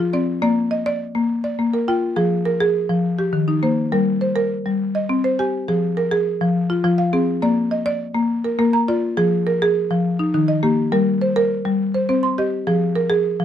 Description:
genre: southern african traditional.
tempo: 137 BPM (dotted quarters).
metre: 12/8.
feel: straight.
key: F dorian.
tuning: A4 = 440 Hz.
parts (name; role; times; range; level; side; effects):
buzzing marimba with medium mallets; solo; 0.0-13.4 s; Eb3 to C6; -17 LUFS; left 1 dB; none.
room: moderate small room reverb, RT60 0.5 s.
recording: none.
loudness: -17 LUFS.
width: side -10 dB against mid.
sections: 0.0-5.7 A section; 5.7-13.4 B section.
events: none.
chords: 0.4 Bb; 2.2 Fm; 3.0 Eb; 3.9 Gm; 4.8 Cm; 5.7 Fm; 7.4 Bb; 9.2 Fm; 10.0 Eb; 10.9 Gm; 11.8 Cm; 12.7 Fm.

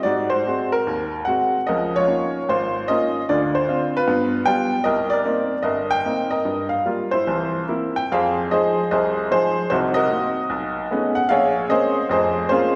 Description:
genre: solo jazz.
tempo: 150 BPM.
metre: 4/4.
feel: swing 67% on 8ths, rubato.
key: C minor, F minor from 8.1 s.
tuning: A4 = 442 Hz.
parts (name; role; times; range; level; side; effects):
bright upright piano; solo; 0.0-12.8 s; F1 to G5; -21 LUFS; equal; none.
room: wet concert hall reverb, RT60 2.2 s.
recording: recorded in a church or concert hall.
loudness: -21 LUFS.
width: mono.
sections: 0.0-8.1 A section; 8.1-12.8 B section.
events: none.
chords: 0.1 Ab7; 1.7 Db69; 3.3 Dm7; 4.1 G7; 4.9 Cm7; 6.5 Gm7; 7.3 C7; 8.1 Fm7; 9.7 Cm7b5; 10.5 B13; 11.3 Bbm9.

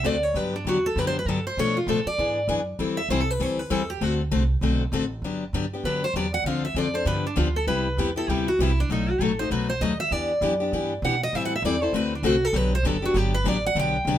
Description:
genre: acoustic string swing (jazz manouche).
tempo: 197 BPM.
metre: 4/4.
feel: swing 60% on 8ths.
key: G major.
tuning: A4 = 440 Hz.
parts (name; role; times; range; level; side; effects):
picked steel-string acoustic guitar; melody; 0.0-14.2 s; D4 to G5; -25 LUFS; right 1 dB; none.
picked steel-string acoustic guitar; accompaniment; 0.0-14.2 s; B2 to A4; -26 LUFS; left 4 dB; none.
upright bass; bass; 0.0-14.2 s; F#1 to B2; -28 LUFS; right 1 dB; none.
room: light reverb.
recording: minimal, uncompressed stereo recording.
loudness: -22 LUFS.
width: side -11 dB against mid.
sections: 0.0-5.2 A section; 5.2-14.2 A section.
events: steel-string acoustic guitar solo 0.0-5.2, 5.2-14.2.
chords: 0.4 Gmaj7; 1.6 Bm7b5; 2.2 E7; 2.8 Am7; 4.0 D7; 5.2 Gmaj7; 6.5 Dm7; 7.1 G7; 7.7 Cmaj9; 8.9 B7; 10.1 Em7; 11.3 Am7; 11.9 D7; 12.5 Gmaj7.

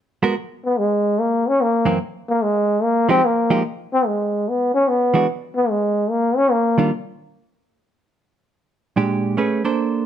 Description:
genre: jazz.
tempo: 146 BPM.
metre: 4/4.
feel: swing 67% on 8ths.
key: Eb major.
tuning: A4 = 438 Hz.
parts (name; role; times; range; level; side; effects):
hollow-body jazz guitar; accompaniment; 0.2-10.1 s; Gb2 to C5; -19 LUFS; right 4 dB; none.
warm trombone; melody; 0.6-6.9 s; Ab3 to Db4; -17 LUFS; left 1 dB; plate reverb.
room: moderate studio reverb, RT60 0.8 s.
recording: dark, warm production.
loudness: -17 LUFS.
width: side -9 dB against mid.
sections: 0.0-9.4 A section.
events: none.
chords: 0.0 Abm9; 1.2 Gb7#11; 2.0 N.C.; 2.8 Fm9; 4.4 E9; 6.1 Ebmaj9; 7.7 N.C.; 8.5 Bb6; 9.4 Bbmaj9.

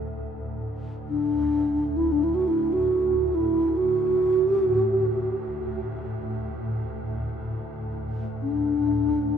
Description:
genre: world meditative, free-time meditation music.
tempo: free time.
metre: none.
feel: none.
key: D major pentatonic.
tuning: A4 = 440 Hz.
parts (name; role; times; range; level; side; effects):
swarming drone; drone; 0.0-9.4 s; D2 to A2; -30 LUFS; equal; built-in reverb.
mellow hollow bass flute; melody; 1.1-9.4 s; D4 to F#4; -23 LUFS; equal; ping-pong delay.
room: wet cathedral reverb, RT60 5.6 s.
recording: none.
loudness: -23 LUFS.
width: side -7 dB against mid.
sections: 0.0-9.4 A section.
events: none.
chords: none.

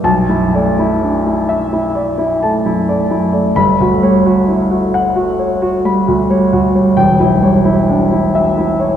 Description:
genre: classical, impressionist solo piano.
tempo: 87 BPM.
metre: 5/4.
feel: rubato.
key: unclear.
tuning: A4 = 435 Hz.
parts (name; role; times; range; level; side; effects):
warm baby grand piano; solo; 0.0-9.0 s; E1 to B5; -11 LUFS; equal; none.
room: wet church reverb, RT60 3.0 s.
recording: recorded in a church or concert hall.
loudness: -11 LUFS.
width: side -9 dB against mid.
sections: 0.0-9.0 A section.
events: none.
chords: 0.0 Bm7; 3.6 Gmaj7#11; 7.0 Em6.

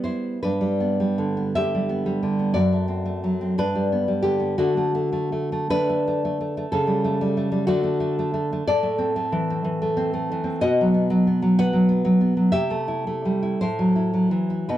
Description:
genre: romantic piece for solo classical guitar.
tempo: 50-62 BPM (dotted quarters).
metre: 6/8.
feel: rubato.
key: G major.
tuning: A4 = 440 Hz.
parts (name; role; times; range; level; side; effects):
nylon-string guitar; solo; 0.0-14.8 s; F#2 to F#5; -20 LUFS; equal; none.
room: light reverb.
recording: dark, warm production.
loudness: -20 LUFS.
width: side -13 dB against mid.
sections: 0.4-14.8 A section.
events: none.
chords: 0.4 G; 2.6 D7/F#; 3.6 G; 4.6 D; 6.7 A7/C#; 7.7 D; 8.6 Am; 10.6 B; 12.6 C6; 13.6 F#m7b5/A.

